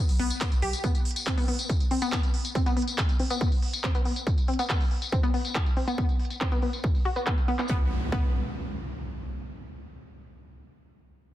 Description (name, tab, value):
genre	driving peak-time techno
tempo	140 BPM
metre	4/4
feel	straight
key	unclear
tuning	A4 = 439 Hz
part	warm sub bass	bass	0.1-0.7 s	B1	-30 LUFS	equal	overdrive, sidechain pumping, low-pass filter
part	techno drum kit	drums	0.1-7.7 s	handclaps, hi-hat, tambourine	-33 LUFS	left 1 dB	sidechain pumping on hats, low-pass filter on hats, sidechain pumping on perc, low-pass filter on perc, low-pass filter on snare, low-pass filter on room
part	analog pluck	riff	0.2-8.3 s	B3 to G4	-31 LUFS	left 2 dB	chorus, tube saturation, sidechain pumping, tape echo
part	electronic kick drum	drums	0.4-8.2 s	none	-26 LUFS	equal	none
part	impact	sound effects	7.7-9.4 s	none	-34 LUFS	equal	none
room	digital ambience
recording	dense, heavily limited modern master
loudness	-24 LUFS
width	side -14 dB against mid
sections	0.0-7.7 A section; 7.7-9.4 B section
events	filter sweep on drum 0.0-7.7; filter sweep on synth arpeggio sound 0.0-7.7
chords	0.0 B5; 7.7 N.C.